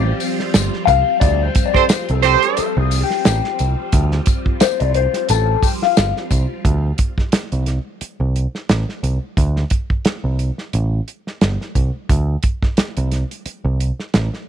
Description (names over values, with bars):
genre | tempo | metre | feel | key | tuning
funk | 88 BPM | 4/4 | swing 56% on 16ths | D minor | A4 = 438 Hz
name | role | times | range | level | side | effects
mellow electric guitar | accompaniment | 0.0-6.1 s | F4 to F5 | -19 LUFS | left 16 dB | wah, lush chorus
phased string machine | sustained chords | 0.0-6.6 s | F3 to F4 | -26 LUFS | right 1 dB | ensemble chorus, phaser
picked electric bass | bass | 0.0-14.3 s | G1 to D2 | -18 LUFS | right 1 dB | none
damped 70s drum kit | drums | 0.2-14.4 s | hi-hat, kick drum, snare drum | -18 LUFS | right 1 dB | none
tambourine | percussion | 0.2-6.5 s | none | -29 LUFS | left 16 dB | none
mellow horn section | second line | 1.7-2.7 s | C4 to C5 | -16 LUFS | right 15 dB | none
room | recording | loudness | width
studio reverb | 1960s-style stereo with parts hard left and right | -15 LUFS | side -9 dB against mid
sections
0.0-6.6 A section; 6.6-14.5 B section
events
clean electric guitar solo 0.0-6.6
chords
0.0 Dm7; 6.6 D7(no3)